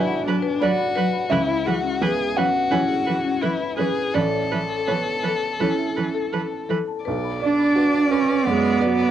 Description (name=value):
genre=neoclassical piano and strings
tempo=85 BPM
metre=4/4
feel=rubato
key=B dorian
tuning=A4 = 438 Hz
part: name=rich violin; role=melody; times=0.0-9.1 s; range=D4 to D5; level=-25 LUFS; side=left 4 dB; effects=cassette tape
part: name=felt-muted upright piano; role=accompaniment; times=0.0-9.1 s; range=A1 to G#5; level=-26 LUFS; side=right 4 dB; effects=none
part: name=marimba with medium hard mallets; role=arpeggios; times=0.1-9.1 s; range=C#4 to B5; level=-28 LUFS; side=left 9 dB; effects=analog delay
part: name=rich cello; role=second line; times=0.3-9.1 s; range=E3 to D4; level=-22 LUFS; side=right 3 dB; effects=none
part: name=clear viola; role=accompaniment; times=0.3-9.1 s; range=F#3 to B4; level=-28 LUFS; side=right 6 dB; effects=none
room=wet studio reverb, RT60 0.7 s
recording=home recording on cassette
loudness=-19 LUFS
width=side -10 dB against mid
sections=0.0-7.1 A section; 7.1-9.1 B section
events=none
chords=0.0 Bm; 1.3 C#m7; 4.2 Aadd9; 7.1 Bm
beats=0.61 | 1.31 2.02 2.72 3.43 | 4.15 4.88 5.61 6.33 | 7.06 7.77 8.47